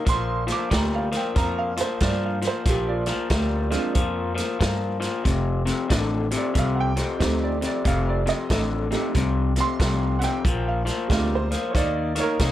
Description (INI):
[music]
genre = electric blues shuffle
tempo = 92 BPM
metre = 4/4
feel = swing 64% on 8ths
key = Bb major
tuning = A4 = 440 Hz
[part]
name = electric guitar through a small old amp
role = riff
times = 0.0-12.5 s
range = F2 to Bb3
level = -26 LUFS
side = left 4 dB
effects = none
[part]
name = clear upright piano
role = accompaniment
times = 0.1-12.5 s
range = Ab3 to D6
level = -28 LUFS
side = right 6 dB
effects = none
[part]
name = upright bass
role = bass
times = 0.1-12.5 s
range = F1 to C3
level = -26 LUFS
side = equal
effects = none
[part]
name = vintage drum kit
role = drums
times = 0.1-12.5 s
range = hi-hat, kick drum, snare drum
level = -26 LUFS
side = right 1 dB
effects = none
[sound]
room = studio reverb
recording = none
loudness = -21 LUFS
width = side -13 dB against mid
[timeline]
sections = 0.0-12.5 A section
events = none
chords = 0.1 Bbadd9; 5.3 F9; 10.5 Bb9; 11.8 Eb7(no3)